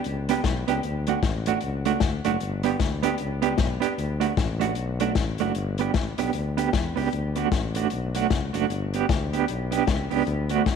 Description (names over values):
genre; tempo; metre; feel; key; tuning
ska; 153 BPM; 4/4; swing 60% on 8ths; unclear; A4 = 440 Hz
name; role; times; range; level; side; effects
vintage drum kit; drums; 0.0-10.8 s; hi-hat, kick drum, snare drum; -27 LUFS; left 4 dB; none
mellow tuba; bass; 0.1-10.8 s; F#1 to E2; -29 LUFS; left 2 dB; none
mellow electric guitar; accompaniment; 0.3-10.6 s; A3 to G4; -26 LUFS; right 8 dB; tremolo, tape echo
room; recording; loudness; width
moderate echo chamber reverb, RT60 1.6 s, small room ambience; 1960s-style stereo; -23 LUFS; side -6 dB against mid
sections
0.0-10.8 A section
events
none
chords
0.0 G; 0.8 D; 2.4 G; 4.0 D; 5.6 G; 7.1 D; 8.7 G